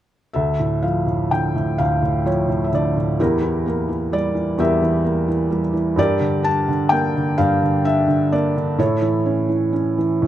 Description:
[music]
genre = classical, lyrical solo piano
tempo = 43 BPM (dotted quarters)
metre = 6/8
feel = rubato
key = D harmonic minor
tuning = A4 = 440 Hz
[part]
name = felt-muted upright piano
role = solo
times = 0.3-10.3 s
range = D2 to A5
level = -17 LUFS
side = equal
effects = none
[sound]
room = light reverb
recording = close, detailed microphones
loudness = -17 LUFS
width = side -12 dB against mid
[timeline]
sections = 0.3-10.3 A section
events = none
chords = 0.3 Dm; 3.2 Edim; 6.0 Gm; 8.8 A

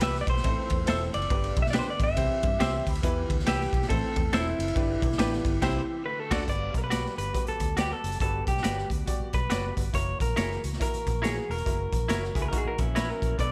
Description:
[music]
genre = uptempo 1960s-style soul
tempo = 139 BPM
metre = 4/4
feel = swing 61% on 8ths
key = unclear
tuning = A4 = 440 Hz
[part]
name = electric guitar through a small old amp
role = melody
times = 0.0-13.5 s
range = E4 to E5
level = -34 LUFS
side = equal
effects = none
[part]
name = clear baby grand piano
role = accompaniment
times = 0.0-13.5 s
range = G2 to B5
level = -38 LUFS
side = equal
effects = none
[part]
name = tonewheel organ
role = sustained chords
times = 0.0-13.5 s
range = D3 to A4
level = -44 LUFS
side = equal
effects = none
[part]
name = semi-hollow electric guitar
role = stabs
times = 0.0-13.1 s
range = D4 to E5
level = -38 LUFS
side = equal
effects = spring reverb
[part]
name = vintage muted fingered electric bass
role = bass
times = 0.0-13.5 s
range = E1 to G2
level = -34 LUFS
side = equal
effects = none
[part]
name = raw garage drum kit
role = drums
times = 0.0-13.5 s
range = crash cymbal, hi-hat, kick drum, ride cymbal, snare drum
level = -32 LUFS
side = equal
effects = none
[part]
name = electric guitar through a small old amp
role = riff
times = 5.6-5.8, 12.4-13.4 s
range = C4 to G#4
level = -41 LUFS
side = equal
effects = none
[sound]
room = studio reverb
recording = none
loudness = -28 LUFS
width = mono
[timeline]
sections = 0.0-6.5 A section; 6.5-13.5 B section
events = grand piano fill 2.4-3.0; band accent 5.6-6.5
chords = 0.4 Am; 1.3 G; 2.2 C; 3.0 Em; 3.9 Am; 4.8 G; 5.6 C; 6.0 D; 6.5 Gmaj7; 9.9 F#7

